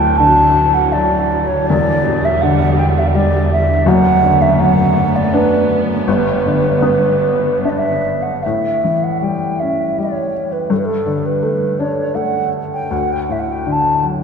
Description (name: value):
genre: celtic folk, Celtic slow air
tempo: 74-84 BPM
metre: 3/4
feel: rubato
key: A mixolydian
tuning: A4 = 440 Hz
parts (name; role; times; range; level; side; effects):
- mellow hollow wooden flute; melody; 0.0-14.1 s; A4 to A5; -16 LUFS; right 2 dB; none
- felt-muted upright piano; accompaniment; 0.0-14.2 s; D1 to D4; -16 LUFS; left 3 dB; none
- warm studio string section; sustained chords; 0.0-8.4 s; E2 to B3; -20 LUFS; right 2 dB; none
room: wet cathedral reverb, RT60 5.8 s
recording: recorded in a church or concert hall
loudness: -13 LUFS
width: side -6 dB against mid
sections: 0.0-8.4 A section; 8.4-14.2 B section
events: none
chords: 0.0 Dadd9; 1.7 Em7; 3.9 Bm7/F#; 6.1 G; 8.4 A7; 10.7 Gsus2; 12.9 D